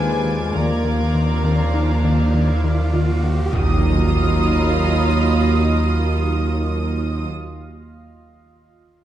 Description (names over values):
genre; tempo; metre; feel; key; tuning
cinematic, suspense film score; 101 BPM; 5/4; straight; Eb harmonic minor; A4 = 440 Hz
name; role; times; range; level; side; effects
rich studio violin section; melody; 0.0-7.3 s; Ab5 to Eb6; -29 LUFS; equal; none
warm studio violin section; second line; 0.0-7.3 s; Cb5 to Eb5; -32 LUFS; left 1 dB; none
warm studio viola section; accompaniment; 0.0-7.3 s; F3 to F4; -28 LUFS; right 3 dB; none
dark French horn section; sustained chords; 0.0-7.3 s; Ab3 to Eb4; -28 LUFS; left 2 dB; none
evolving wavetable pad; sustained chords; 0.0-7.3 s; F4 to F5; -33 LUFS; right 2 dB; phaser, built-in reverb
rubbery square bass; riff; 0.0-3.4 s; Eb3 to Eb4; -24 LUFS; left 4 dB; none
warm symphonic cello section; bass; 0.0-7.3 s; Eb2; -24 LUFS; right 3 dB; none
warm symphonic double bass section; bass; 0.0-7.3 s; Eb2; -26 LUFS; right 2 dB; none
pure sine sub bass; drone; 0.0-7.3 s; Eb2; -22 LUFS; equal; none
riser and impact; sound effects; 1.2-7.8 s; none; -26 LUFS; equal; none
warm symphonic violin section; texture; 0.0-6.2 s; Bb5 to Ab6; -34 LUFS; left 2 dB; none
mellow trombone section; sustained chords; 0.6-7.3 s; F3 to Eb4; -32 LUFS; right 3 dB; none
room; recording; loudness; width
wet recital hall reverb, RT60 1.8 s; dark, warm production; -16 LUFS; side -12 dB against mid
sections
0.0-3.5 A section; 3.5-6.5 B section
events
riser 1.2-3.5; impact 3.5-6.5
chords
0.0 Bb/Eb; 3.5 Ebmadd9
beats
| 0.55 1.15 1.74 2.34 2.93 | 3.52 4.12 4.71 5.31 5.90